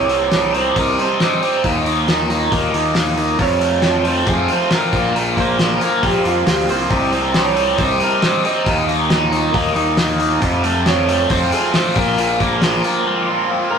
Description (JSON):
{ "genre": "indie rock", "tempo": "136 BPM", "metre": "4/4", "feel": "straight", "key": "Eb lydian", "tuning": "A4 = 441 Hz", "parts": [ { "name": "electric guitar through a small old amp", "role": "melody", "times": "0.0-13.8 s", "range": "F4 to Eb5", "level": "-21 LUFS", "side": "right 4 dB", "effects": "none" }, { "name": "biting overdriven guitar", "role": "riff", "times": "0.0-13.8 s", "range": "Eb2 to F4", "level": "-19 LUFS", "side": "left 3 dB", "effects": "phaser" }, { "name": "overdriven electric guitar", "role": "riff", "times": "0.0-13.8 s", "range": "Eb2 to F4", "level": "-21 LUFS", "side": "right 4 dB", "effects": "none" }, { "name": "fuzz fingered electric bass", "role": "bass", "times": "0.0-12.8 s", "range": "Bb1 to F2", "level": "-23 LUFS", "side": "equal", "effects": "overdrive" }, { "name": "cloth-damped thuddy drum kit", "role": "drums", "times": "0.1-12.9 s", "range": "hi-hat, kick drum, snare drum", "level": "-21 LUFS", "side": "left 1 dB", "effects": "none" } ], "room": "moderate stone room reverb, RT60 1.2 s", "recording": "rough rehearsal-room recording", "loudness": "-14 LUFS", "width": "side -6 dB against mid", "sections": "0.0-13.8 A section", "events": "clean electric guitar solo 0.0-13.8", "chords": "0.0 Cmadd9; 1.6 Eb5; 3.4 F; 4.9 Bbsus2; 6.9 Cmadd9; 8.7 Eb5; 10.4 F; 12.0 Bbsus2" }